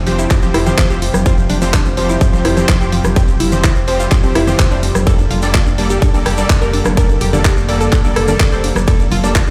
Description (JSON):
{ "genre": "progressive house", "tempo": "126 BPM", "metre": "4/4", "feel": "straight", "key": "F major", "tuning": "A4 = 440 Hz", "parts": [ { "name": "warm analog pad", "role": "sustained chords", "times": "0.0-9.5 s", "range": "C3 to A4", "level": "-26 LUFS", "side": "equal", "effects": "chorus, sidechain pumping" }, { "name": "analog pluck", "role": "arpeggios", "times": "0.0-9.5 s", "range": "F3 to C5", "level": "-23 LUFS", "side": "equal", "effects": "chorus, sidechain pumping, dub echo" }, { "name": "round analog bass", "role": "bass", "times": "0.0-9.5 s", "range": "F1 to F2", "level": "-21 LUFS", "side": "equal", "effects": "sidechain pumping" }, { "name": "supersaw stab", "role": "stabs", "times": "0.1-9.4 s", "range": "F3 to D5", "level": "-23 LUFS", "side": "equal", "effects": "analog chorus, sidechain pumping, dub echo" }, { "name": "deep house drum kit", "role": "drums", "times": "0.1-9.5 s", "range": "handclaps, hi-hat, ride cymbal, rim click", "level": "-23 LUFS", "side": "equal", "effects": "overdrive" }, { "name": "egg shaker", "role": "percussion", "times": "0.2-9.5 s", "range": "none", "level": "-34 LUFS", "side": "equal", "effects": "none" }, { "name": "electronic kick drum", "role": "drums", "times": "0.3-9.4 s", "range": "none", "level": "-16 LUFS", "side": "equal", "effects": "overdrive" }, { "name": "congas", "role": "percussion", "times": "0.4-9.2 s", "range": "none", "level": "-25 LUFS", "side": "equal", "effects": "sidechain pumping on perc" } ], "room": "light reverb, digital ambience", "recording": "played on a big sound system in a bare room, large studio reverb", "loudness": "-14 LUFS", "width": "mono", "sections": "0.0-9.5 A section", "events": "none", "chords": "0.0 Fsus2; 5.1 Gmadd9/F" }